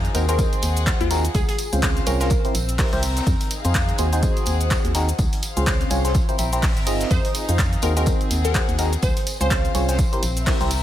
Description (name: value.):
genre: piano house.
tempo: 125 BPM.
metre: 4/4.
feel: swing 58% on 16ths.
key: unclear.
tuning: A4 = 439 Hz.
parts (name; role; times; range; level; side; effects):
organ-like FM bass; bass; 0.0-10.8 s; G1 to F2; -23 LUFS; equal; sidechain pumping.
punchy analog drum machine; drums; 0.0-10.8 s; handclaps, hi-hat, shaker; -28 LUFS; equal; overdrive, studio reverb.
tambourine; percussion; 0.0-10.8 s; none; -38 LUFS; right 4 dB; none.
rich studio string section; texture; 0.0-10.8 s; C4 to Gb5; -31 LUFS; left 3 dB; sidechain pumping.
glassy wavetable pluck; melody; 0.1-2.3, 7.1-9.6 s; F4 to C5; -29 LUFS; left 1 dB; chorus, dub echo.
barking FM electric piano; riff; 0.1-10.7 s; C4 to E5; -26 LUFS; equal; phaser, sidechain pumping, dub echo.
raw garage drum kit; drums; 0.2-10.8 s; hi-hat, snare drum, tambourine; -36 LUFS; left 1 dB; high-pass filter on hats, studio reverb, high-pass filter on snare, high-pass filter on perc, high-pass filter on room.
electronic kick drum; drums; 0.4-10.6 s; none; -22 LUFS; equal; overdrive, studio reverb.
room: small room ambience.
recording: none.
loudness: -18 LUFS.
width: side -12 dB against mid.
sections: 0.0-10.8 A section.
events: none.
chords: 0.1 Ab7/Eb; 1.3 Dbmaj7; 2.3 C7; 3.3 Fm7; 4.0 Ab7/Eb; 5.2 Dbmaj7; 6.1 C7; 7.1 Fm7; 7.8 Ab7/Eb; 9.0 Dbmaj7; 10.0 C7.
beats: 0.39 0.87 | 1.35 1.83 2.31 2.79 | 3.27 3.75 4.23 4.71 | 5.19 5.67 6.15 6.63 | 7.11 7.59 8.07 8.55 | 9.03 9.51 9.99 10.47.